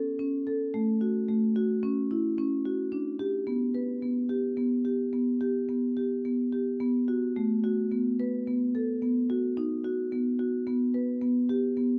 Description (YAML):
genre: contemporary instrumental, contemporary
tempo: 109 BPM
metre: 7/4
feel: straight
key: unclear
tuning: A4 = 440 Hz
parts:
  - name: marimba with soft mallets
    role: solo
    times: 0.0-12.0 s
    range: A3 to B4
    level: -28 LUFS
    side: equal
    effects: none
room: light reverb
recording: close, detailed microphones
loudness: -28 LUFS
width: mono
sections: 0.0-6.8 A section; 6.8-12.0 B section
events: none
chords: none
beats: 0.20 0.74 1.29 1.83 2.38 | 2.93 3.47 4.02 4.58 5.13 5.69 6.25 | 6.81 7.37 7.92 8.47 9.02 9.57 10.12 | 10.67 11.22 11.77